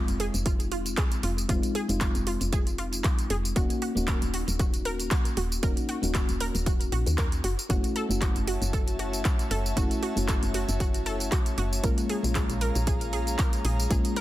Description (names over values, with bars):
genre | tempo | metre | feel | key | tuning
deep house | 116 BPM | 4/4 | swing 55% on 16ths | unclear | A4 = 436 Hz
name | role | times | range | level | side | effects
mellow FM electric piano | stabs | 0.0-14.2 s | Ab3 to Gb4 | -32 LUFS | left 1 dB | chorus, sidechain pumping, tape echo
woody FM bass | bass | 0.0-14.0 s | Eb1 to Eb2 | -30 LUFS | equal | sidechain pumping
house drum kit | drums | 0.1-14.2 s | handclaps, hi-hat, tambourine | -34 LUFS | right 1 dB | overdrive
analog pluck | arpeggios | 0.2-14.2 s | F4 to Bb4 | -35 LUFS | right 2 dB | chorus, sidechain pumping, tape echo
electronic kick drum | drums | 0.5-14.0 s | none | -27 LUFS | equal | overdrive
airy breathy pad | sustained chords | 7.7-14.2 s | Gb4 to Bb5 | -37 LUFS | equal | chorus, sidechain pumping
room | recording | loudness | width
digital ambience | dense, heavily limited modern master | -24 LUFS | side -15 dB against mid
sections
0.0-14.2 A section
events
none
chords
0.0 Fm7; 3.6 Ebm7; 7.4 Gbm7; 11.8 Bbm7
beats
0.46 0.97 | 1.49 2.01 2.53 3.04 | 3.56 4.08 4.59 5.11 | 5.63 6.15 6.66 7.18 | 7.70 8.22 8.73 9.25 | 9.77 10.29 10.80 11.32 | 11.84 12.35 12.87 13.39 | 13.91